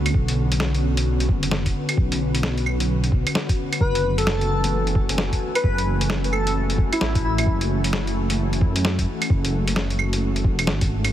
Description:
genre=future garage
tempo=131 BPM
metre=4/4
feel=swing 62% on 16ths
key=F# minor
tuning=A4 = 438 Hz
part: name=ethereal airy pad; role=sustained chords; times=0.0-11.1 s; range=D3 to G#5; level=-26 LUFS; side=equal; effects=ensemble chorus, built-in reverb, sidechain pumping
part: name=dark detuned saw bass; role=bass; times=0.0-11.1 s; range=E1 to F#2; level=-23 LUFS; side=equal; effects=sidechain pumping
part: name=electronic kick drum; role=drums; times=0.1-10.9 s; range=none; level=-22 LUFS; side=equal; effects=none
part: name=lo-fi sampler-style drum kit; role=drums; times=0.1-11.1 s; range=claves, hi-hat, snare drum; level=-26 LUFS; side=equal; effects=overdrive, low-pass filter on snare, low-pass filter on hats, low-pass filter on perc
part: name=airy dreamy lead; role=melody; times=3.8-7.4 s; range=E4 to B4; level=-27 LUFS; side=left 1 dB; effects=chorus, cassette tape, tape echo
room=little or no reverb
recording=heavily compressed radio sound, multiband compression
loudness=-19 LUFS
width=side -12 dB against mid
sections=0.0-11.1 A section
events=none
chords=0.0 Bm9; 3.8 F#m9

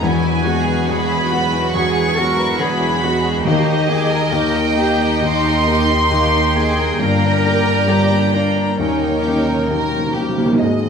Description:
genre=cinematic, emotional film score for orchestra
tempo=68 BPM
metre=4/4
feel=uneven beats, rubato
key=unclear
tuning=A4 = 440 Hz
part: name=rich studio violin section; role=second line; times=0.0-10.9 s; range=Bb3 to Eb5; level=-23 LUFS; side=right 1 dB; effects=none
part: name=dark baby grand piano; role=accompaniment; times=0.0-10.9 s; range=E1 to G5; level=-20 LUFS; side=left 1 dB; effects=none
part: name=warm chamber viola section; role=accompaniment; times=0.0-10.4 s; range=F#3 to G5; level=-23 LUFS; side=right 2 dB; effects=none
part: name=concert harp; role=arpeggios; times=0.0-10.9 s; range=G2 to Bb5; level=-24 LUFS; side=left 6 dB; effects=none
part: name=dark studio double bass section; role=bass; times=0.0-10.4 s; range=Eb2 to G2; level=-24 LUFS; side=right 2 dB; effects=none
part: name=warm studio cello section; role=bass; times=0.0-10.9 s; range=Ab2 to Bb4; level=-24 LUFS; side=equal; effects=none
part: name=warm studio violin section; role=melody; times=0.1-10.9 s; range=Eb5 to Db6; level=-22 LUFS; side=equal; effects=none
part: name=timpani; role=percussion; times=3.5-10.6 s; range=Eb3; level=-21 LUFS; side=right 2 dB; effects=none
part: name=clear French horn section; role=sustained chords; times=10.6-10.9 s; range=C4 to Ab4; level=-24 LUFS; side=left 6 dB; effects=none
room=wet stone room reverb, RT60 1.1 s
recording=minimal, uncompressed stereo recording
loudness=-14 LUFS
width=side -6 dB against mid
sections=0.0-10.6 A section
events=timpani fill 8.8-10.6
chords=0.0 Eadd9; 3.5 Eb; 7.0 Gm; 8.8 Eb7

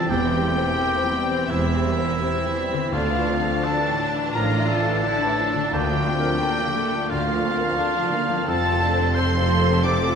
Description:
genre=cinematic, emotional film score for orchestra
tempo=86 BPM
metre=4/4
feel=rubato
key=unclear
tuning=A4 = 440 Hz
part: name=warm symphonic violin section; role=melody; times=0.0-10.2 s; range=E5 to D6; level=-28 LUFS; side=left 2 dB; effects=none
part: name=rich symphonic violin section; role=second line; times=0.0-10.2 s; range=A3 to F4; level=-30 LUFS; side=left 1 dB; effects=none
part: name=warm oboe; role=second line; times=0.0-10.2 s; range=E4 to D5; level=-26 LUFS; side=right 1 dB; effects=none
part: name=clear grand piano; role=accompaniment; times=0.0-10.2 s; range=D2 to E5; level=-28 LUFS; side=left 2 dB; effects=none
part: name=rich symphonic viola section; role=accompaniment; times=0.0-10.2 s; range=C3 to A4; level=-28 LUFS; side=equal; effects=none
part: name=concert harp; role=arpeggios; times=0.0-10.2 s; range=D3 to Bb5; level=-32 LUFS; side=left 4 dB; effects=none
part: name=rich symphonic double bass section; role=bass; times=0.1-10.2 s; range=E1 to D2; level=-28 LUFS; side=right 2 dB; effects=none
part: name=warm symphonic cello section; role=bass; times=0.1-10.2 s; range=D2 to A2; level=-28 LUFS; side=right 2 dB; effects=none
room=wet recital hall reverb, RT60 1.7 s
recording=recorded in a church or concert hall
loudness=-19 LUFS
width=side -6 dB against mid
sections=0.0-10.2 A section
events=none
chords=0.1 C/E; 2.9 Dmadd9; 5.7 Bb/D; 8.5 F

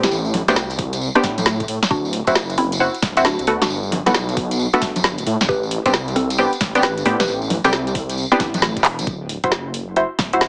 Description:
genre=UK garage, two-step garage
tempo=134 BPM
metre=4/4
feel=swing 64% on 16ths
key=A dorian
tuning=A4 = 440 Hz
part: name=mallet-like synth pluck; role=melody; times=0.0-9.0 s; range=G3 to B4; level=-26 LUFS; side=equal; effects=chorus, phaser, digital delay
part: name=punchy chord stab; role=stabs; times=0.0-10.4 s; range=A3 to C5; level=-22 LUFS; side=equal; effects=chorus, tape echo
part: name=dark detuned saw bass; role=bass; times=0.0-10.5 s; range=D1 to A2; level=-27 LUFS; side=equal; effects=tube saturation
part: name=garage drum kit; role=drums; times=0.0-10.5 s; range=congas, handclaps, hi-hat, snare drum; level=-23 LUFS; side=equal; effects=none
part: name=tambourine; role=percussion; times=0.0-9.1 s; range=none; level=-32 LUFS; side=equal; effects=none
part: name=electronic kick drum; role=drums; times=0.8-10.3 s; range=none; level=-30 LUFS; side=equal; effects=none
room=moderate studio reverb, RT60 0.5 s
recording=heavily compressed radio sound, multiband compression, small speaker sound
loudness=-19 LUFS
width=mono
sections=0.0-9.1 A section; 9.1-10.5 B section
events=drop 0.0-9.1; drum fill 8.8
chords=0.0 Am11; 1.9 D9; 3.7 Gmaj9; 5.3 Am11; 9.1 D9

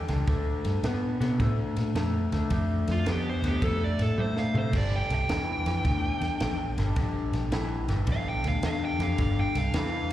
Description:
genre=electric blues shuffle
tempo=108 BPM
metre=4/4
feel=swing 66% on 8ths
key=unclear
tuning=A4 = 440 Hz
part: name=dark smooth lead guitar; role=melody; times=0.0-10.1 s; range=F4 to G5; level=-32 LUFS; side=right 3 dB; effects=overdrive, plate reverb, slapback echo
part: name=electric guitar through a small old amp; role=riff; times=0.0-10.1 s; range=G2 to B3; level=-31 LUFS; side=left 3 dB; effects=lush chorus, slapback echo
part: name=vintage muted fingered electric bass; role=bass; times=0.1-10.0 s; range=G1 to C3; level=-28 LUFS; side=equal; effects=none
part: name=compact cocktail drum kit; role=drums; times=0.1-10.1 s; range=crash cymbal, kick drum, ride cymbal, snare drum, toms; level=-33 LUFS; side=right 1 dB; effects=none
room=light reverb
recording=live gig heard through the venue's PA, recital hall reverb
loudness=-25 LUFS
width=side -13 dB against mid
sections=0.0-10.1 A section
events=lead electric guitar solo 0.0-10.1; drum fill 4.2-4.7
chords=0.3 Dm; 4.7 Gm7

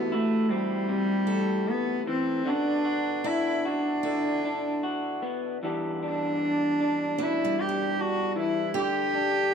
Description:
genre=acoustic folk-pop ballad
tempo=76 BPM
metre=4/4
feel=straight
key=E minor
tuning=A4 = 441 Hz
part: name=warm cello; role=melody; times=0.0-9.5 s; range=G3 to G4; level=-26 LUFS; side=equal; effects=plate reverb
part: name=electric guitar through a small old amp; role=accompaniment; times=0.0-9.5 s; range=E2 to G4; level=-30 LUFS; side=left 2 dB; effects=none
part: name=picked steel-string acoustic guitar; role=arpeggios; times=0.0-9.5 s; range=G3 to A4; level=-34 LUFS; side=right 7 dB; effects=none
room=moderate studio reverb, RT60 0.8 s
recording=dark, warm production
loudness=-25 LUFS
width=side -7 dB against mid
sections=0.0-9.5 A section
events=none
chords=0.0 Am/C; 2.4 Bm/D; 5.6 Em7; 8.8 Dsus4

